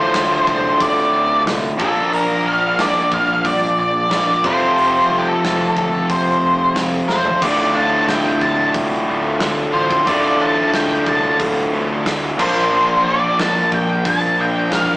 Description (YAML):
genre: classic rock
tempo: 90 BPM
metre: 4/4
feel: straight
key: D minor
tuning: A4 = 440 Hz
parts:
  - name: octave-fuzz lead guitar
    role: melody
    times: 0.0-15.0 s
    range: G4 to A5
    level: -17 LUFS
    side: equal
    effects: distortion
  - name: mellow tonewheel organ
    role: sustained chords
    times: 0.0-15.0 s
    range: none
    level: barely audible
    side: none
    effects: none
  - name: biting overdriven guitar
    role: riff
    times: 0.0-15.0 s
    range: D2 to Bb4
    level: -24 LUFS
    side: left 1 dB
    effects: none
  - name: cranked stack guitar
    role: riff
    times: 0.0-15.0 s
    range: D2 to Bb4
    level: -20 LUFS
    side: right 1 dB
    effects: overdrive
  - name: fingered electric bass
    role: bass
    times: 0.0-14.9 s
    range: D1 to G2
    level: -36 LUFS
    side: equal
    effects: none
  - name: gated 80s drum kit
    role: drums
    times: 0.1-14.9 s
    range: crash cymbal, hi-hat, kick drum, snare drum, toms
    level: -24 LUFS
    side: equal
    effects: none
  - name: overdriven electric guitar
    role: riff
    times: 7.4-15.0 s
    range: D2 to Bb4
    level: -23 LUFS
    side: equal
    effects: spring reverb
room: moderate studio reverb, RT60 0.6 s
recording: rough rehearsal-room recording, tube saturation, small speaker sound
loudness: -14 LUFS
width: side -22 dB against mid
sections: 0.0-15.0 A section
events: drum fill 7.1-7.4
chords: 0.0 Dm; 1.8 Bb; 4.4 F; 7.4 Dm; 12.4 Bb